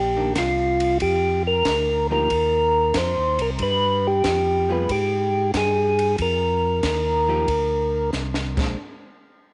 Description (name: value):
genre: soul jazz organ trio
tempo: 93 BPM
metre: 4/4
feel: swing 69% on 8ths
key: unclear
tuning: A4 = 440 Hz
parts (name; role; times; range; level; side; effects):
- percussive tonewheel organ; melody; 0.0-8.1 s; F4 to C5; -22 LUFS; equal; slow rotary speaker
- tonewheel organ; bass; 0.0-8.8 s; Bb1 to Ab2; -29 LUFS; equal; overdrive
- vintage hollow-body jazz guitar; accompaniment; 0.2-8.8 s; Eb3 to Ab4; -32 LUFS; equal; none
- compact cocktail drum kit; drums; 0.4-8.7 s; crash cymbal, hi-hat, kick drum, ride cymbal, snare drum; -32 LUFS; equal; none
room: light reverb, studio reverb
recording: nothing above 10.7 kHz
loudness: -21 LUFS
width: mono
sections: 0.0-8.8 A section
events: drum fill 8.1-8.8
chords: 0.0 Cm9; 1.0 F9sus4; 3.6 G7b9; 6.2 F7sus4; 8.5 Bb9; 8.8 N.C.